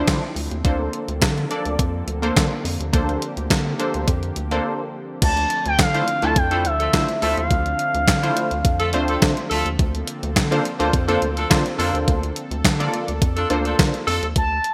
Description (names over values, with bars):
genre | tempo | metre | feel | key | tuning
early-eighties boogie funk | 105 BPM | 4/4 | straight | unclear | A4 = 439 Hz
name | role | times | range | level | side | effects
funky polysynth comp | accompaniment | 0.0-14.0 s | F3 to D5 | -27 LUFS | equal | chorus
warm analog pad | sustained chords | 0.0-14.3 s | D3 to A4 | -34 LUFS | equal | chorus
rubbery square bass | bass | 0.0-14.6 s | D2 to D3 | -28 LUFS | equal | none
crisp 8-bit digital drum machine | drums | 0.1-14.7 s | crash cymbal, handclaps, hi-hat, kick drum, snare drum | -23 LUFS | equal | gated reverb
expressive portamento lead | melody | 5.2-9.5, 14.4-14.7 s | E5 to A5 | -24 LUFS | equal | chorus
clear horn section | second line | 6.5-14.3 s | A3 to A4 | -28 LUFS | equal | none
room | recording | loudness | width
moderate plate reverb, RT60 2.4 s | bright 1980s-style digital production | -21 LUFS | mono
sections
0.0-5.2 A section; 5.2-14.4 B section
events
break 4.6-5.2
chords
0.0 Dm9; 0.6 Bbmaj9/D; 5.2 Dm9; 9.8 Bbmaj9/D